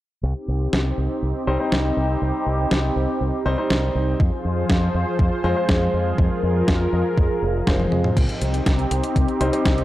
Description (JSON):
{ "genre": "italo disco", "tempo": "121 BPM", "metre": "4/4", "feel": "straight", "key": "C minor", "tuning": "A4 = 442 Hz", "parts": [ { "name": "lush unison pad", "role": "sustained chords", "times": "0.2-9.8 s", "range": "F3 to C5", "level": "-24 LUFS", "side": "equal", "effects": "chorus, phaser" }, { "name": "fingered electric bass with an envelope filter", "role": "bass", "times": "0.2-9.8 s", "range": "F1 to F2", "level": "-23 LUFS", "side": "equal", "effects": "low-pass filter" }, { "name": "clean 12-bit digital drum machine", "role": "drums", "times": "0.7-9.8 s", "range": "crash cymbal, hi-hat, snare drum, toms", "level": "-25 LUFS", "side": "equal", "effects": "overdrive" }, { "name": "clear concert grand piano", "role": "stabs", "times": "1.5-9.8 s", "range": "G3 to C5", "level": "-26 LUFS", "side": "left 1 dB", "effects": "low-pass filter, tape echo" }, { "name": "electronic kick drum", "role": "drums", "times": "4.2-9.8 s", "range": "none", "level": "-20 LUFS", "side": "equal", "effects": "overdrive" } ], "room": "little or no reverb", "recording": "dry, gritty hardware recording", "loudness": "-18 LUFS", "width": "side -15 dB against mid", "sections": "0.2-8.2 A section; 8.2-9.8 B section", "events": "drum fill 7.8-8.2; filter sweep on grand piano 8.2-9.8", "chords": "0.2 Cm; 4.2 Fm; 8.2 Cm" }